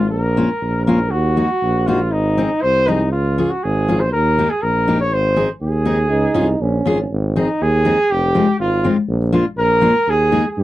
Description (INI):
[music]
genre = alpine folk, alpine dance band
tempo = 120 BPM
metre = 2/4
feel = straight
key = Db major, Ab major from 7.1 s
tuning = A4 = 441 Hz
[part]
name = warm flugelhorn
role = melody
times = 0.0-10.6 s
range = Eb4 to Db5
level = -18 LUFS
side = right 1 dB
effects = none
[part]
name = warm tuba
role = bass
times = 0.0-10.6 s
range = F1 to G2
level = -19 LUFS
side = right 1 dB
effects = none
[part]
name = fingerpicked steel-string acoustic guitar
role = accompaniment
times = 0.4-10.4 s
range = Ab3 to Ab4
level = -18 LUFS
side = left 2 dB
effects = none
[part]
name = clear euphonium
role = second line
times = 6.1-7.1 s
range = Db4 to Eb4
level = -21 LUFS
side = right 4 dB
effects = none
[sound]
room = light reverb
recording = dry, close 1970s-style studio recording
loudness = -14 LUFS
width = side -15 dB against mid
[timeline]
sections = 0.0-7.1 A section; 7.1-10.6 B section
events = none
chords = 0.1 Bbm; 1.1 Ebm; 2.1 Ab; 3.1 Db; 4.1 Eb; 5.1 Ab; 6.1 Db; 7.1 Ab; 8.1 Fm; 9.1 Bb; 10.1 Ebsus4